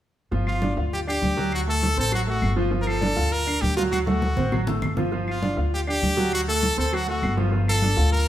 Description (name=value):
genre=latin, salsa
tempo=200 BPM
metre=4/4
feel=straight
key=G minor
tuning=A4 = 440 Hz
part: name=clear concert grand piano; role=accompaniment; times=0.3-8.2 s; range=F3 to F5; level=-27 LUFS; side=right 1 dB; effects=none
part: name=upright bass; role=bass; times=0.3-8.3 s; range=G1 to D2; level=-25 LUFS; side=equal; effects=none
part: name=congas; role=percussion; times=0.3-8.3 s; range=none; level=-29 LUFS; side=equal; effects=none
part: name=brilliant trumpet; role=melody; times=0.5-8.3 s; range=F4 to Bb4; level=-26 LUFS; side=equal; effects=none
part: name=claves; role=percussion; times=0.5-7.8 s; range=none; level=-38 LUFS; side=equal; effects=none
room=moderate stone room reverb, RT60 1.3 s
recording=band playing live in one room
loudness=-21 LUFS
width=side -12 dB against mid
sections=0.3-8.3 A section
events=drum fill 3.9-5.1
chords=0.3 G5; 1.5 D7; 2.7 Gm7; 3.9 D7; 5.1 G5; 6.3 D7; 7.5 Gm7